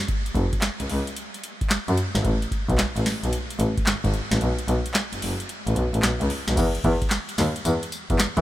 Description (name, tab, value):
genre	R&B, new jack swing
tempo	111 BPM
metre	4/4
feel	swing 65% on 16ths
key	unclear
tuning	A4 = 438 Hz
part	booming analog drum machine	drums	0.1-8.4 s	crash cymbal, handclaps, hi-hat, kick drum, snare drum, tambourine	-25 LUFS	equal	none
part	clear double bass	bass	0.4-8.4 s	F#1 to E3	-23 LUFS	equal	none
room	light reverb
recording	none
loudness	-22 LUFS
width	side -14 dB against mid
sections	0.0-6.6 A section; 6.6-8.4 B section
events	kick muted 4.4-6.6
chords	none